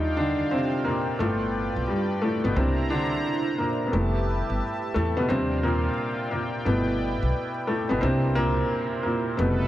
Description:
lo-fi hip hop; 88 BPM; 4/4; swing 65% on 16ths; A4 = 443 Hz
felt-muted upright piano; accompaniment; 0.0-9.7 s; G2 to F4; -25 LUFS; equal; low-pass filter
warm analog pad; sustained chords; 0.0-9.7 s; E4 to Bb5; -31 LUFS; right 2 dB; chorus, phaser, low-pass filter
upright bass; bass; 0.0-9.7 s; F1 to E2; -27 LUFS; equal
light reverb, small room ambience; vinyl crackle; -23 LUFS; side -13 dB against mid
0.0-9.7 A section
felt piano solo 0.0-9.7
0.0 Ebmaj9; 1.2 G7; 2.6 C9; 3.9 Fmaj9#11; 5.3 Ebmaj9; 6.6 G6; 8.0 C7
0.51 1.19 1.88 | 2.56 3.24 3.92 4.60 | 5.28 5.97 6.65 7.33 | 8.01 8.69 9.38

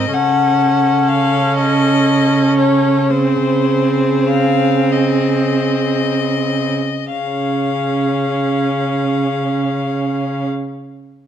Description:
classical, slow romantic movement for string quartet; 25-43 BPM (dotted quarters); 6/8; rubato; Db major; A4 = 439 Hz
rich violin; melody; 0.0-10.5 s; C5 to Gb5; -20 LUFS; left 9 dB
rich violin; second line; 0.0-10.5 s; Ab4 to Bb4; -23 LUFS; left 3 dB
clear viola; accompaniment; 0.0-10.5 s; C4 to Db4; -20 LUFS; right 4 dB
rich cello; bass; 0.0-10.5 s; Ab2 to Db3; -17 LUFS; right 2 dB
moderate recital hall reverb, RT60 1.4 s; dark, warm production; -13 LUFS; side -9 dB against mid
0.0-7.1 A section; 7.1-11.3 B section
slowing down 0.0-7.1
0.1 Gbm/Db; 3.1 Ab/Db; 7.1 Db
| 0.13 1.54 | 3.10 4.90 | 7.11 9.17

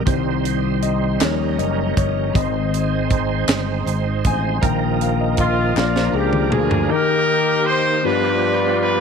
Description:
slow gospel; 53 BPM (dotted quarters); 6/8; straight; Eb major; A4 = 440 Hz
mellow tine electric piano; accompaniment; 0.0-9.0 s; G2 to Ab5; -22 LUFS; left 12 dB; fast stereo tremolo
bright tonewheel organ; sustained chords; 0.0-9.0 s; F3 to C5; -24 LUFS; right 13 dB; fast rotary speaker, overdrive, chorus vibrato
modern bright fingered electric bass; bass; 0.0-6.9 s; Gb1 to Eb2; -22 LUFS; right 2 dB
tight funk drum kit; drums; 0.1-6.9 s; hi-hat, kick drum, snare drum, toms; -21 LUFS; right 2 dB
group handclap; percussion; 1.2-6.1 s; -31 LUFS; left 12 dB
mellow horn section; melody; 5.4-9.0 s; Bb3 to C5; -18 LUFS; right 1 dB; tape echo
light reverb, small room reverb; 1960s-style stereo with parts hard left and right; -16 LUFS; side -6 dB against mid
0.0-6.9 A section; 6.9-9.0 B section
tine electric piano solo 0.0-6.9; drum fill 5.8-6.9
0.1 Cm; 1.2 Eb7; 2.4 Ab; 4.6 Bbsus4; 5.8 Bb; 6.9 Eb; 8.0 G7
| 0.07 1.21 | 2.35 3.49 | 4.63 5.77 | 6.91 8.05

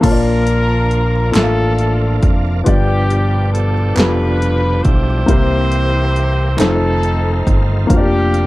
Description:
slow gospel; 46 BPM (dotted quarters); 6/8; straight; Bb major; A4 = 439 Hz
warm horn section; melody; 0.0-8.5 s; Bb3 to C5; -19 LUFS; left 1 dB
dark concert grand piano; accompaniment; 0.0-8.5 s; G2 to A5; -19 LUFS; left 3 dB
bright tonewheel organ; sustained chords; 0.0-8.5 s; B2 to G4; -25 LUFS; right 4 dB; slow rotary speaker, overdrive, chorus vibrato
fingered electric bass; bass; 0.0-8.5 s; F1 to C2; -16 LUFS; equal
punchy analog drum machine; drums; 0.0-8.5 s; crash cymbal, hi-hat, kick drum, snare drum; -15 LUFS; equal
group handclap; percussion; 1.3-7.0 s; -25 LUFS; right 2 dB
little or no reverb; dark, warm production; -12 LUFS; side -18 dB against mid
0.0-8.5 A section
0.0 Bbmaj7; 2.7 G7; 5.3 C7; 6.6 F7; 7.9 Bb/F
| 0.03 1.34 | 2.66 3.97 | 5.28 6.58 | 7.89

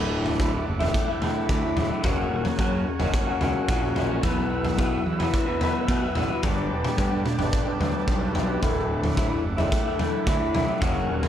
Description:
psychedelic rock; 109 BPM; 4/4; straight; A4 = 440 Hz
combo organ; sustained chords; 0.0-11.3 s; A4 to E6; -35 LUFS; right 5 dB; wide subtle chorus
electric guitar through a small old amp; riff; 0.0-11.3 s; D2 to B4; -26 LUFS; left 1 dB; phaser
fuzz picked electric bass; bass; 0.0-11.2 s; D1 to B2; -29 LUFS; equal; overdrive
raw garage drum kit; drums; 0.3-11.3 s; kick drum, toms; -26 LUFS; equal
light reverb; -22 LUFS; side -10 dB against mid
0.0-11.3 A section
0.0 Dadd9; 2.0 F#add9; 4.2 Bsus4; 6.4 Gadd9; 8.6 Dadd9
0.40 0.95 1.50 | 2.04 2.59 3.14 3.69 | 4.24 4.79 5.34 5.88 | 6.43 6.98 7.53 8.08 | 8.62 9.17 9.72 10.27 | 10.82

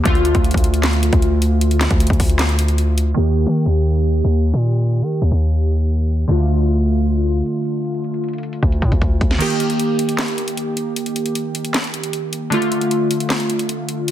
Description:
hip hop, trap; 154 BPM; 4/4; half-time; A4 = 441 Hz
glassy digital keys; accompaniment; 0.0-14.1 s; D3 to G4; -20 LUFS; equal; chorus, low-pass filter
distorted 808-style bass; bass; 0.1-9.4 s; D2 to Eb3; -16 LUFS; equal; distortion
trap drum kit; drums; 0.1-14.1 s; crash cymbal, handclaps, hi-hat, kick drum, snare drum; -20 LUFS; equal
digital ambience; dense, heavily limited modern master, low-pass filter; -15 LUFS; side -12 dB against mid
0.0-3.2 A section; 3.2-9.4 B section; 9.4-14.1 C section
filter sweep 3.2-9.4; drum fill 8.6-9.4; break 9.4-14.1
0.1 Dm; 3.2 Eb; 6.3 Dm; 9.4 Eb; 12.5 Dm
| 0.06 0.45 0.83 1.22 | 1.61 2.00 2.39 2.78 | 3.17 3.56 3.95 4.34 | 4.73 5.12 5.51 5.90 | 6.29 6.68 7.07 7.46 | 7.85 8.24 8.63 9.02 | 9.41 9.79 10.19 10.57 | 10.96 11.35 11.74 12.13 | 12.52 12.91 13.30 13.69 | 14.08

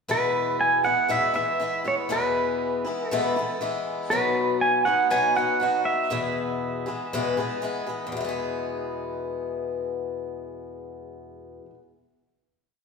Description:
country; 120 BPM; 4/4; straight; E major; A4 = 440 Hz
pedal steel guitar; melody; 0.1-7.6 s; B4 to G#5; -23 LUFS; right 2 dB
picked swing-style acoustic guitar; accompaniment; 0.1-11.8 s; E2 to G#4; -27 LUFS; left 3 dB
wet stone room reverb, RT60 1.3 s; band playing live in one room; -23 LUFS; side -5 dB against mid
0.1-8.1 A section; 8.1-12.1 final chord
0.1 E; 4.1 B; 6.1 E
| 0.09 0.59 1.09 1.59 | 2.10 2.60 3.10 3.60 | 4.11 4.61 5.11 5.61 | 6.12 6.62 7.12 7.62 | 8.12 8.62 9.12 9.62 | 10.13 10.63 11.13 11.63

